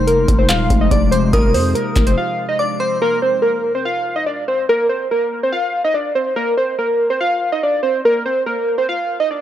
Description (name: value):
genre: hip hop, trap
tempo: 143 BPM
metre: 4/4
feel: half-time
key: unclear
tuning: A4 = 440 Hz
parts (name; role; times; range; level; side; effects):
- warbly lo-fi synth keys; melody; 0.0-9.4 s; Bb4 to F5; -16 LUFS; equal; chorus, tape echo
- glassy synth bell; second line; 0.0-3.0 s; C6 to Eb6; -28 LUFS; left 1 dB; chorus, tape echo
- warbly tape-like pad; sustained chords; 0.0-3.0 s; C3 to Eb4; -23 LUFS; left 1 dB; chorus, built-in reverb, phaser
- growling 808-style bass; bass; 0.0-2.2 s; Eb1 to F2; -18 LUFS; equal; none
- booming analog drum machine; drums; 0.1-2.2 s; handclaps, hi-hat, kick drum; -16 LUFS; equal; overdrive
room: light reverb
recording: none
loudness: -15 LUFS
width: side -11 dB against mid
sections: 0.0-3.0 A section; 3.0-9.4 A section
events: break 2.2-3.0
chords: 0.0 Fm7; 3.0 N.C.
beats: 0.07 0.49 0.91 | 1.33 1.75 2.17 2.59 | 3.01 3.43 3.85 4.27 | 4.69 5.11 5.53 5.95 | 6.37 6.79 7.21 7.63 | 8.05 8.47 8.88 9.30